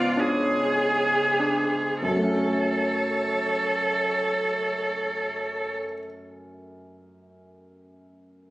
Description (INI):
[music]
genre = classical, slow romantic movement for piano trio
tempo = 35 BPM (dotted quarters)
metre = 12/8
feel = rubato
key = F# minor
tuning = A4 = 441 Hz
[part]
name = clear violin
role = melody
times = 0.0-5.7 s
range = C#5 to D5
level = -31 LUFS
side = left 1 dB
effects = none
[part]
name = clear cello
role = second line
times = 0.0-5.7 s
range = E#4 to A4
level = -24 LUFS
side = right 1 dB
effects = none
[part]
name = clear grand piano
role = accompaniment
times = 0.0-8.5 s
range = C#2 to C#5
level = -28 LUFS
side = equal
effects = none
[sound]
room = wet recital hall reverb, RT60 1.5 s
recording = recorded on a phone in the room, studio reverb, compression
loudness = -22 LUFS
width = side -18 dB against mid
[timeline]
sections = 0.0-2.0 A section; 2.0-8.5 B section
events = slowing down 0.0-2.0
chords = 0.0 C#7(no3); 2.0 F#m